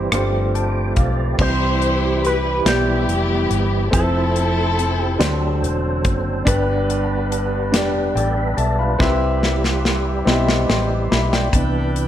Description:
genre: slow gospel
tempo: 47 BPM (dotted quarters)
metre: 6/8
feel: straight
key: C major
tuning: A4 = 439 Hz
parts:
  - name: warm upright piano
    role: accompaniment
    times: 0.0-12.1 s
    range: G2 to C6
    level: -22 LUFS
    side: left 1 dB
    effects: none
  - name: percussive tonewheel organ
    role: sustained chords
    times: 0.0-12.1 s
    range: C3 to G5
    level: -25 LUFS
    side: right 3 dB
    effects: slow rotary speaker, overdrive, chorus vibrato
  - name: hollow-body short-scale fingered electric bass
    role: bass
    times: 0.0-12.1 s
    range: E1 to D2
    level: -22 LUFS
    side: equal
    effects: none
  - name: modern studio drum kit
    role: drums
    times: 0.1-12.1 s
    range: crash cymbal, hi-hat, kick drum, rim click, snare drum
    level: -21 LUFS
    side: equal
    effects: none
  - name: dark studio string section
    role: melody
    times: 1.4-5.6 s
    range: B3 to C5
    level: -23 LUFS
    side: left 5 dB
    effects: none
  - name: electric guitar with an envelope filter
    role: melody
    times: 1.4-5.6 s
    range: G4 to C5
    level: -24 LUFS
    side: right 3 dB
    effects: lush chorus
  - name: pipe organ, sparkling flutes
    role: sustained chords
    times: 11.5-12.1 s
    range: D5 to B5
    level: -31 LUFS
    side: left 1 dB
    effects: none
room: light reverb, small room ambience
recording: none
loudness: -16 LUFS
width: side -11 dB against mid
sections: 0.0-1.4 A section; 1.4-11.5 B section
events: upright piano fill 0.1-1.4; tonewheel organ fill 0.1-1.4, 5.2-6.5; drum fill 9.0-11.5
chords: 0.1 G9sus4; 1.4 Cmaj7; 3.9 Fmaj7; 5.2 D7; 6.5 G; 9.0 Cmaj7; 11.5 Cmaj9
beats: 0.12 | 1.39 2.66 | 3.93 5.20 | 6.46 7.73 | 9.00 10.27 | 11.53

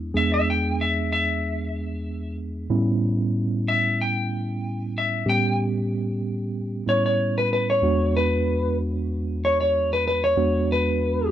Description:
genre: blues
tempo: 94 BPM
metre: 4/4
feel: straight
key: E mixolydian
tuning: A4 = 440 Hz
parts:
  - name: mellow tine electric piano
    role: accompaniment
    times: 0.0-11.3 s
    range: E2 to G#4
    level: -24 LUFS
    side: right 1 dB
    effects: medium stereo tremolo
  - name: clean lap steel guitar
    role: melody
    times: 0.2-11.3 s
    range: B4 to G5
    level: -23 LUFS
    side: left 1 dB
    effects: none
room: little or no reverb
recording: dry, close 1970s-style studio recording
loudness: -21 LUFS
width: side -11 dB against mid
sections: 0.0-11.3 A section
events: electric slide guitar solo 0.0-11.3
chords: 0.0 E7; 2.7 A9; 7.8 E9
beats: | 0.15 0.79 1.43 2.07 | 2.71 3.34 3.98 4.62 | 5.26 5.90 6.54 7.18 | 7.82 8.45 9.09 9.73 | 10.37 11.01

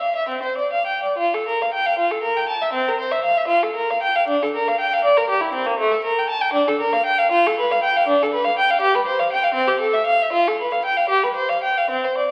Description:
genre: classical, baroque-style suite movement for unaccompanied violin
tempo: 78 BPM (dotted quarters)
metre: 6/8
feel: uneven beats, rubato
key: F major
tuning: A4 = 435 Hz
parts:
  - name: warm violin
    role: solo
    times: 0.0-12.3 s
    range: A3 to A5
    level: -20 LUFS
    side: equal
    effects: none
room: wet recital hall reverb, RT60 1.4 s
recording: very old 78 rpm record, vinyl crackle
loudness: -20 LUFS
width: mono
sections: 0.0-1.2 A section; 1.2-12.3 A section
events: none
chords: none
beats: 0.30 | 1.19 1.98 | 2.74 3.49 | 4.29 5.04 | 5.80 6.54 | 7.32 8.08 | 8.82 9.55 | 10.34 11.10 | 11.90

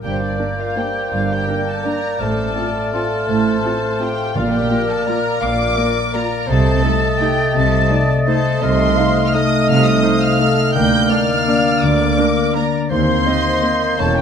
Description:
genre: classical, orchestral ballroom waltz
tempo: 168 BPM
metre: 3/4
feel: uneven beats, rubato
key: G minor, Bb major from 8.6 s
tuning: A4 = 440 Hz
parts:
  - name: dark studio violin section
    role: melody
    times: 0.0-14.2 s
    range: D5 to G6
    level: -24 LUFS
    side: equal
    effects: none
  - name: dark cor anglais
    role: second line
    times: 0.0-14.2 s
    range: C5 to Eb5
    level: -26 LUFS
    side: right 2 dB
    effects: none
  - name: hollow concert flute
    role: second line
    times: 0.0-14.2 s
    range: F6 to A6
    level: -26 LUFS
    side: left 2 dB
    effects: none
  - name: mellow clarinet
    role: second line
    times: 0.0-14.2 s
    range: A4 to F5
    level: -25 LUFS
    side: equal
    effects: none
  - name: warm studio violin section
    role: second line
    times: 0.0-14.2 s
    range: D4 to G5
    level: -26 LUFS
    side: left 2 dB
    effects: none
  - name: mellow bassoon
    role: accompaniment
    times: 0.0-14.2 s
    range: A3 to Bb3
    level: -25 LUFS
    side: right 2 dB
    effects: none
  - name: concert harp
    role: arpeggios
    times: 0.0-14.2 s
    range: G2 to A5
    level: -23 LUFS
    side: left 10 dB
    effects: none
  - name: clear chamber double bass section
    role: bass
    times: 0.0-14.2 s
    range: E1 to Eb2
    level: -24 LUFS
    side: right 4 dB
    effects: none
  - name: warm symphonic cello section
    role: bass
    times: 0.0-14.2 s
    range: D2 to C3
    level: -23 LUFS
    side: right 4 dB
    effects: none
  - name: dark symphonic viola section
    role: accompaniment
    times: 0.4-13.7 s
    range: A3 to F4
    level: -26 LUFS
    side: right 2 dB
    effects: none
  - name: mellow French horn section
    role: sustained chords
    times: 0.4-14.2 s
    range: A3 to F4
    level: -23 LUFS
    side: left 3 dB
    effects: none
  - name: timpani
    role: percussion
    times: 4.4-4.9 s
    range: Bb2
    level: -28 LUFS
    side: left 2 dB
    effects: none
room: moderate scoring stage reverb, RT60 1.5 s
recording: none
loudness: -14 LUFS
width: side -7 dB against mid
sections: 0.0-14.2 A section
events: none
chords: 0.0 Gm; 2.2 F/A; 4.4 Bb; 6.5 Adim/C; 8.6 F7/C; 10.8 Bb/D; 12.9 Cm7/Eb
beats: | 0.04 0.40 0.77 | 1.12 1.48 1.85 | 2.20 2.56 2.93 | 3.29 3.64 4.01 | 4.36 4.71 5.08 | 5.43 5.78 6.15 | 6.50 6.85 7.21 | 7.56 7.91 8.28 | 8.62 8.97 9.34 | 9.69 10.03 10.40 | 10.75 11.11 11.47 | 11.83 12.18 12.56 | 12.91 13.27 13.64 | 13.99

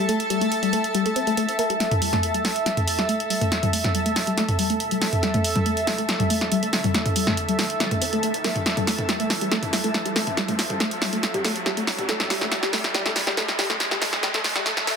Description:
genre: driving peak-time techno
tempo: 140 BPM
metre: 4/4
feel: straight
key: unclear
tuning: A4 = 440 Hz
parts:
  - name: tight sequenced synth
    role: riff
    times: 0.0-15.0 s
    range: G3 to C4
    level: -27 LUFS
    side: left 1 dB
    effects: chorus, phaser, tube saturation, ping-pong delay
  - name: granular cloud pad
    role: texture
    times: 0.0-15.0 s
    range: A4 to A5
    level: -27 LUFS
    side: equal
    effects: built-in reverb
  - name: punchy analog drum machine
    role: drums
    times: 0.1-15.0 s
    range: hi-hat, snare drum, toms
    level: -24 LUFS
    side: right 1 dB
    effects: none
  - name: riser and swell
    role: sound effects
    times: 3.4-15.0 s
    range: none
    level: -31 LUFS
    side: equal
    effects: none
room: wet stone room reverb, RT60 0.9 s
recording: dense, heavily limited modern master, high-pass filter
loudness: -20 LUFS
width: side -6 dB against mid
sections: 0.0-1.8 A section; 1.8-15.0 B section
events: build-up 1.8-15.0; drum fill 1.8-15.0; filter sweep on synth arpeggio sound 1.8-15.0; filter sweep 1.8-15.0; riser 3.4-15.0; swell 14.7-15.0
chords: 0.0 A5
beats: | 0.09 0.52 0.95 1.37 | 1.80 2.23 2.66 3.09 | 3.52 3.95 4.37 4.80 | 5.23 5.66 6.09 6.52 | 6.95 7.37 7.80 8.23 | 8.66 9.09 9.52 9.95 | 10.37 10.80 11.23 11.66 | 12.09 12.52 12.95 13.37 | 13.80 14.23 14.66

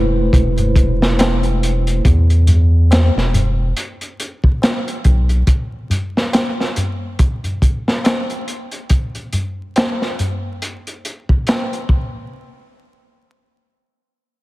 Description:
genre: trip hop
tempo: 70 BPM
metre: 4/4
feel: swing 58% on 16ths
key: unclear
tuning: A4 = 441 Hz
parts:
  - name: bell-like tine electric piano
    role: accompaniment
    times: 0.0-2.1 s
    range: A3 to C5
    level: -22 LUFS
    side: right 1 dB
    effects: fast stereo tremolo, vintage 12-bit sampler grit, low-pass filter, tape echo
  - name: round analog bass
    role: bass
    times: 0.0-5.4 s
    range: E1 to E2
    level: -14 LUFS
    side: equal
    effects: none
  - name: crunchy breakbeat drum kit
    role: drums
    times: 0.3-12.1 s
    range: hi-hat, kick drum, snare drum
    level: -17 LUFS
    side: equal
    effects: none
  - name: tabla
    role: percussion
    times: 0.6-11.7 s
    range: none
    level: -23 LUFS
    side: equal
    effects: none
room: light reverb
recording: vinyl crackle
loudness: -14 LUFS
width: side -18 dB against mid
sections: 0.0-12.3 A section; 12.3-14.4 B section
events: filter sweep on tine electric piano 0.0-2.0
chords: 0.0 Amadd9; 2.0 E5; 5.5 N.C.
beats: 0.33 1.18 | 2.04 2.90 3.75 4.61 | 5.47 6.33 7.18 8.04 | 8.90 9.75 10.61 11.47

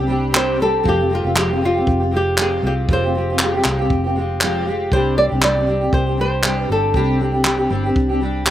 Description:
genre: acoustic pop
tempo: 118 BPM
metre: 4/4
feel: swing 55% on 16ths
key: unclear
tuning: A4 = 441 Hz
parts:
  - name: fingerpicked steel-string acoustic guitar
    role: accompaniment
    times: 0.0-8.5 s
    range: C3 to G4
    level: -20 LUFS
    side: equal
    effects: double-tracked left and right, slapback echo
  - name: vintage muted fingered electric bass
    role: bass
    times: 0.0-8.5 s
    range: F1 to C2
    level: -22 LUFS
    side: equal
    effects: none
  - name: compact cocktail drum kit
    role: drums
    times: 0.3-8.5 s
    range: handclaps, kick drum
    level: -19 LUFS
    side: equal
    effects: none
  - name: flamenco guitar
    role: melody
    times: 0.4-7.9 s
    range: F4 to D5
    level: -20 LUFS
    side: equal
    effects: none
room: little or no reverb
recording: recorded outdoors, with no room sound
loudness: -15 LUFS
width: side -12 dB against mid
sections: 0.0-8.5 A section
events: none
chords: 0.0 Csus2; 0.8 Fmadd9; 4.9 Csus2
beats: 0.34 | 0.85 1.36 1.86 2.37 | 2.88 3.39 3.90 4.40 | 4.91 5.42 5.93 6.44 | 6.94 7.45 7.96 8.47

